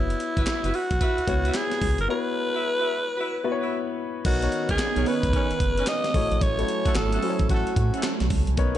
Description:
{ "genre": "R&B, new jack swing", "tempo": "111 BPM", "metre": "4/4", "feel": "swing 63% on 16ths", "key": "B major", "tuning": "A4 = 439 Hz", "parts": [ { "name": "raspy alto saxophone", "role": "melody", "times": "0.0-8.0 s", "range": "E4 to D#5", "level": "-27 LUFS", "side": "right 1 dB", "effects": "none" }, { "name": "warm concert grand piano", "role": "accompaniment", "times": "0.0-8.8 s", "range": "A3 to C#5", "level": "-30 LUFS", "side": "left 5 dB", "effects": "none" }, { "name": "solid FM bass", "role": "bass", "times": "0.0-8.8 s", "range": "F#1 to A2", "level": "-26 LUFS", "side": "equal", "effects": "none" }, { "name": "breakbeat sampler-style drum kit", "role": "drums", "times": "0.1-8.8 s", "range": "crash cymbal, handclaps, hi-hat, kick drum, snare drum", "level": "-26 LUFS", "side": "equal", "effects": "gated reverb" }, { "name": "warm horn section", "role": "stabs", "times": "0.4-8.1 s", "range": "A3 to E5", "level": "-34 LUFS", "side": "right 1 dB", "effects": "none" }, { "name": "phased analog pad", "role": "sustained chords", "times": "4.5-8.8 s", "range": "D#3 to A#4", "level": "-31 LUFS", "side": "right 5 dB", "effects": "phaser, chorus" } ], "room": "light reverb, digital ambience", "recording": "nothing above 10.7 kHz", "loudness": "-22 LUFS", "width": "side -12 dB against mid", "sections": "0.0-4.3 A section; 4.3-8.8 B section", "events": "break 2.1-4.3", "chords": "0.0 F#7sus4; 4.3 Bmaj9; 6.1 A6" }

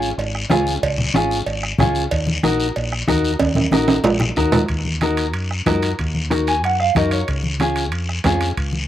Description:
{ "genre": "latin, cumbia", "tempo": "186 BPM", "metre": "4/4", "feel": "straight", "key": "Eb minor", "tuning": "A4 = 440 Hz", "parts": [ { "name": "mellow electric guitar", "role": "accompaniment", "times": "0.0-8.5 s", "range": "Db4 to Ab5", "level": "-20 LUFS", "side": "left 1 dB", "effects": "slapback echo" }, { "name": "deep dub fingered electric bass", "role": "bass", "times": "0.0-8.9 s", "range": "Ab1 to Gb2", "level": "-23 LUFS", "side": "equal", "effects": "none" }, { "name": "guiro", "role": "percussion", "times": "0.0-8.9 s", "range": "none", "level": "-28 LUFS", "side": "left 4 dB", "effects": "none" }, { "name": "cowbell and timbales", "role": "percussion", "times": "0.2-8.7 s", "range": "none", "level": "-22 LUFS", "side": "right 4 dB", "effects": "none" }, { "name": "bombo", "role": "percussion", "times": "0.3-8.7 s", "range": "none", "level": "-28 LUFS", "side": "right 1 dB", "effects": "none" }, { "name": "congas", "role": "percussion", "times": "0.5-8.9 s", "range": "none", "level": "-24 LUFS", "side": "left 2 dB", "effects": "none" } ], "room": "little or no reverb", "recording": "recorded outdoors, with no room sound", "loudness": "-17 LUFS", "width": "side -12 dB against mid", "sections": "0.0-4.7 A section; 4.7-8.9 B section", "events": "drum fill 3.4-4.7; clean electric guitar fill 6.3-7.3", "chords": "0.0 Db; 2.1 Ebm; 7.3 Db" }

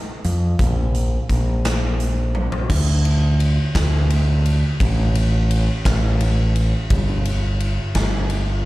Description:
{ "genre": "quiet-loud alternative rock", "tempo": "57 BPM (dotted quarters)", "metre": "6/8", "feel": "straight", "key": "unclear", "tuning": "A4 = 440 Hz", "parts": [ { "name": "growling fingered electric bass", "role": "bass", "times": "0.2-8.7 s", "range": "G1 to F2", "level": "-18 LUFS", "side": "equal", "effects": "overdrive" }, { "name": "big rock drum kit", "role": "drums", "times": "0.2-8.5 s", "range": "crash cymbal, hi-hat, kick drum, ride cymbal, snare drum, toms", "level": "-24 LUFS", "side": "equal", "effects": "none" } ], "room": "little or no reverb", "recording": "live gig heard through the venue's PA, recital hall reverb", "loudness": "-17 LUFS", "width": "side -18 dB against mid", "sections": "0.0-2.7 A section; 2.7-8.7 B section", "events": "drum fill 2.4-2.7", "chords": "none" }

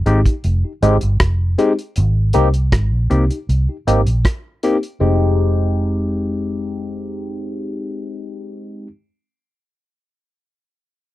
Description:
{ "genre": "lovers rock reggae", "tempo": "79 BPM", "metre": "4/4", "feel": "straight", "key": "F minor", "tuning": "A4 = 440 Hz", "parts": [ { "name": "vintage muted fingered electric bass", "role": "bass", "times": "0.0-8.9 s", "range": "F1 to C2", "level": "-16 LUFS", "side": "equal", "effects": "none" }, { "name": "barky tine electric piano", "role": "accompaniment", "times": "0.1-8.9 s", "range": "Ab3 to G4", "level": "-19 LUFS", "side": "left 2 dB", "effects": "overdrive, phaser" }, { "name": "cloth-damped thuddy drum kit", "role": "drums", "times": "0.1-5.0 s", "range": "hi-hat, kick drum, rim click", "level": "-18 LUFS", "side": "equal", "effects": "none" } ], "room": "little or no reverb", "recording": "dry, close 1970s-style studio recording", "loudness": "-15 LUFS", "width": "side -16 dB against mid", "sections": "0.0-5.0 A section; 5.0-8.0 B section", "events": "none", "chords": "0.0 Fm7; 2.0 Abmaj7; 5.0 Fm7" }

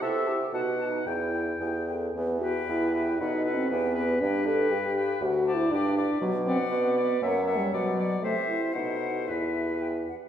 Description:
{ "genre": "quick classical-period movement for wind quintet", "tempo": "109-120 BPM", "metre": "2/4", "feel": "rubato", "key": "E minor", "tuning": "A4 = 442 Hz", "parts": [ { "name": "bright silver concert flute", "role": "melody", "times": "0.0-10.1 s", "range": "E5 to A5", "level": "-37 LUFS", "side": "left 6 dB", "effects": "none" }, { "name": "bright oboe", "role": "second line", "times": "0.0-10.1 s", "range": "B4 to G5", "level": "-35 LUFS", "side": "left 4 dB", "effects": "none" }, { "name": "warm French horn", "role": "accompaniment", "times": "0.0-10.1 s", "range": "F#3 to A4", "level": "-28 LUFS", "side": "equal", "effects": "none" }, { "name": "warm clarinet", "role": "accompaniment", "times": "0.0-10.1 s", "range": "D#4 to D5", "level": "-37 LUFS", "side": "right 4 dB", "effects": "none" }, { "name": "clear bassoon", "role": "bass", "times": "0.0-10.1 s", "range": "D2 to C3", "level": "-30 LUFS", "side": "right 1 dB", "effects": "none" } ], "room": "wet recital hall reverb, RT60 1.8 s", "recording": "heard from further back in the room", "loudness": "-25 LUFS", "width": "side -9 dB against mid", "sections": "0.0-2.2 A section; 2.2-10.3 B section", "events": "none", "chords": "0.0 Am/C; 0.5 B; 1.1 Em; 3.2 B7; 3.7 Em; 4.2 G; 5.2 D7; 5.7 G; 6.2 Bm; 7.2 F#7; 7.7 Bm; 8.2 Am/C; 8.7 B7b9; 9.3 Em" }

